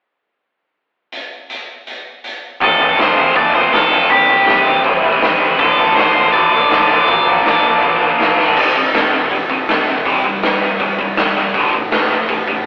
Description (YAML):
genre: punk rock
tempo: 161 BPM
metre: 4/4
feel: straight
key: unclear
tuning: A4 = 441 Hz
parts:
  - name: raw garage drum kit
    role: drums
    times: 1.1-12.6 s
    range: crash cymbal, hi-hat, kick drum, snare drum, toms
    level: -19 LUFS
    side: equal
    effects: none
  - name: biting overdriven guitar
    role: melody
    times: 2.6-8.2 s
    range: G4 to D5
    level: -17 LUFS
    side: equal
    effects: none
  - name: distorted electric guitar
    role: riff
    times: 2.6-8.6 s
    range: D2 to C4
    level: -23 LUFS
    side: equal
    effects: none
  - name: tight distorted guitar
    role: riff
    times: 2.6-12.6 s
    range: D2 to C4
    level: -18 LUFS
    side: equal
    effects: distortion
  - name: growling picked electric bass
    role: bass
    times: 2.6-12.6 s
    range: D1 to C#2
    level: -32 LUFS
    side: equal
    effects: none
room: light reverb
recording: rough rehearsal-room recording, telephone sound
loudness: -13 LUFS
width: mono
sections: 1.1-2.6 A section; 2.6-8.6 B section; 8.6-12.7 C section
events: drum fill 8.4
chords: 1.1 N.C.; 2.6 F; 4.1 C5; 5.6 D5; 7.1 Bb; 8.6 F5; 10.1 C5; 11.5 D5